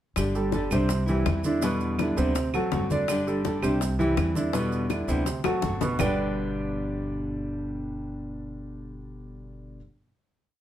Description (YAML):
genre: latin, Cuban son and guajira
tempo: 165 BPM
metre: 4/4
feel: straight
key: G major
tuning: A4 = 438 Hz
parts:
  - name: nylon-string guitar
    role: accompaniment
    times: 0.2-9.8 s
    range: G2 to G4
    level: -30 LUFS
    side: left 2 dB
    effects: none
  - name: upright bass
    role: bass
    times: 0.2-9.8 s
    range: G1 to E2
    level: -31 LUFS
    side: equal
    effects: none
  - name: bongos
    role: percussion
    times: 0.2-6.1 s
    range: none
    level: -33 LUFS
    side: left 6 dB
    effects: none
  - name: claves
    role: percussion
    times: 0.2-6.1 s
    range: none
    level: -37 LUFS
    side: right 4 dB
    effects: none
  - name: congas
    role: percussion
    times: 0.2-6.1 s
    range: none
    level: -35 LUFS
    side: left 2 dB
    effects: none
  - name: maracas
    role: percussion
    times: 0.2-6.1 s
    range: none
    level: -41 LUFS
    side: right 6 dB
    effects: none
  - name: warm grand piano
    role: arpeggios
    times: 0.3-9.8 s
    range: B2 to G5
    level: -28 LUFS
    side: right 2 dB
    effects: none
room: moderate studio reverb, RT60 0.6 s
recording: heard from further back in the room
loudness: -24 LUFS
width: side -12 dB against mid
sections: 0.2-6.0 montuno (vamp); 6.0-8.9 final chord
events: drum fill 5.5-6.0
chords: 0.2 Gsus2; 0.9 C; 1.6 Em7; 2.4 D7; 3.1 Gsus2; 3.8 C; 4.5 Em7; 5.3 D7; 6.0 G